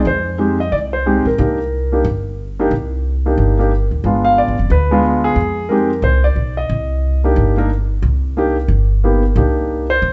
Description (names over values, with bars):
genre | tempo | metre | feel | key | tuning
jazz | 181 BPM | 4/4 | swing 61% on 8ths | C minor | A4 = 440 Hz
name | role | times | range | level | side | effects
warm grand piano | melody | 0.0-10.1 s | Ab3 to F5 | -19 LUFS | equal | none
upright bass | bass | 0.0-10.1 s | F1 to F2 | -19 LUFS | equal | none
room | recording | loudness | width
moderate large studio reverb, RT60 1.2 s | band playing live in one room, nothing above 7.8 kHz | -16 LUFS | mono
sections
0.0-9.4 A section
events
none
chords
0.0 Fm7; 1.4 Cm7; 4.0 G7b9; 5.4 Fm7; 6.7 Cm7; 8.7 Gaug; 9.4 Cm7